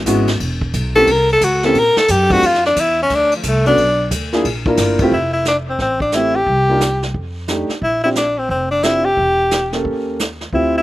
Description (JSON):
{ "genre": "jazz, small-group swing and bop", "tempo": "178 BPM", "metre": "4/4", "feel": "swing 64% on 8ths", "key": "F major from 5.1 s", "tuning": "A4 = 440 Hz", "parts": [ { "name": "upright bass", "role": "bass", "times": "0.0-10.8 s", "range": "E1 to Bb2", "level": "-22 LUFS", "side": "equal", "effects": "none" }, { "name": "warm concert grand piano", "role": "accompaniment", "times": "0.1-10.8 s", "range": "G#3 to Bb4", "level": "-18 LUFS", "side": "equal", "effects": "none" }, { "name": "vintage brush drum kit", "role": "drums", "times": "0.1-10.8 s", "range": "brushed snare drum, hi-hat, kick drum, ride cymbal, snare drum", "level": "-23 LUFS", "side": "equal", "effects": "none" }, { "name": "breathy tenor saxophone", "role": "melody", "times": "1.0-10.8 s", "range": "F3 to Bb4", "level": "-14 LUFS", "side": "left 1 dB", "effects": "slapback echo" } ], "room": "little or no reverb", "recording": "recorded outdoors, with no room sound", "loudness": "-13 LUFS", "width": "side -16 dB against mid", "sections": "0.0-5.1 A section; 5.1-10.8 B section", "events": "tenor saxophone solo 0.0-5.1", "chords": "0.0 Amaj13 (rootless); 1.1 C7(no3); 2.4 F5; 3.8 Bm; 4.4 Bb; 5.1 Fmaj9; 6.5 Cm11; 7.1 F13; 7.8 Bb69; 9.2 Edim; 9.8 Eb7#11" }